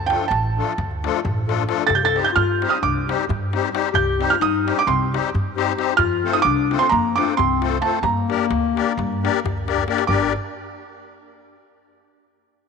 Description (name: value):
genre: balkan folk, Balkan wedding band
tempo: 263 BPM (eighths)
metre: 9/8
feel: straight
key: G minor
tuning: A4 = 440 Hz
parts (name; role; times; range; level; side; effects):
- felt-muted upright piano; melody; 0.0-10.3 s; G5 to A6; -21 LUFS; right 7 dB; none
- upright bass; bass; 0.0-10.3 s; G1 to G2; -26 LUFS; right 2 dB; none
- musette accordion; accompaniment; 0.1-10.3 s; F3 to D5; -24 LUFS; left 10 dB; none
- darbuka; percussion; 0.1-10.3 s; none; -28 LUFS; left 3 dB; none
- dark clarinet; second line; 1.9-10.3 s; A3 to A4; -24 LUFS; left 11 dB; none
room: moderate plate reverb, RT60 3.4 s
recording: 1960s-style stereo with parts hard left and right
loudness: -18 LUFS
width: side -5 dB against mid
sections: 0.0-10.1 A section; 10.1-12.1 B section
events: drum fill 9.7-10.1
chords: 0.0 Dm; 1.9 Cm; 6.0 F; 8.0 Gm